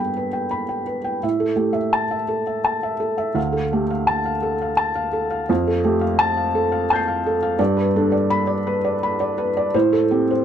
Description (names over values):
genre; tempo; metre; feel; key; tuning
neoclassical minimalist piano; 56 BPM (dotted quarters); 6/8; rubato; unclear; A4 = 440 Hz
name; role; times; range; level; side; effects
felt-muted upright piano; solo; 0.0-10.4 s; D2 to C7; -18 LUFS; equal; none
room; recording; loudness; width
light reverb; dark, warm production; -18 LUFS; side -9 dB against mid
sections
0.0-10.4 A section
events
none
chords
0.0 G; 1.2 A5; 3.4 Dm; 5.5 Fadd9; 7.6 G; 9.7 Am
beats
0.15 | 1.23 2.30 | 3.37 4.44 | 5.49 6.54 | 7.59 8.66 | 9.74